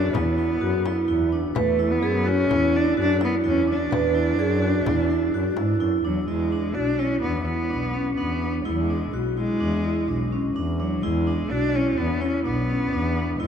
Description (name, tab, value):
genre	contemporary instrumental, chamber music in an uneven meter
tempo	127 BPM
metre	5/4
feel	straight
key	E mixolydian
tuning	A4 = 440 Hz
part	warm cello	melody	0.0-13.5 s	F#3 to D4	-25 LUFS	left 1 dB	none
part	vibraphone with medium mallets	arpeggios	0.0-13.5 s	C#4 to B4	-24 LUFS	right 2 dB	none
part	dark double bass	bass	0.0-13.5 s	B1 to G#2	-27 LUFS	left 1 dB	none
part	frame drum	percussion	0.1-5.9 s	none	-34 LUFS	left 6 dB	none
room	wet cathedral reverb, RT60 6.1 s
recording	in a vast, echoing space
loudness	-21 LUFS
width	side -7 dB against mid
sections	0.0-6.3 A section; 6.3-13.5 B section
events	none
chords	0.0 Bm/E; 6.3 E7